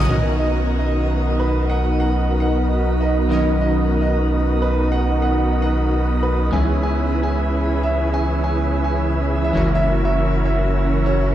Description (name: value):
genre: future bass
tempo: 149 BPM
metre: 4/4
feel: half-time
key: B major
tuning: A4 = 440 Hz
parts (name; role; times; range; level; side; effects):
- ethereal airy pad; sustained chords; 0.0-11.3 s; C#3 to A#4; -30 LUFS; right 2 dB; none
- supersaw chords; riff; 0.0-11.3 s; B3 to E5; -22 LUFS; right 1 dB; cassette tape, low-pass filter
- saturated sub bass; bass; 0.0-11.3 s; F#1 to C#2; -20 LUFS; equal; none
- clear concert grand piano; melody; 0.1-11.3 s; B4 to G#5; -26 LUFS; right 2 dB; digital delay
- glassy digital keys; accompaniment; 0.1-11.3 s; D#3 to A#4; -27 LUFS; left 2 dB; chorus
room: light reverb, digital ambience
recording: played on a big sound system in a bare room, large studio reverb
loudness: -17 LUFS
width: side -12 dB against mid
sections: 0.1-11.3 A section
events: none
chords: 0.1 Bmaj7; 6.5 C#m7; 9.6 F#7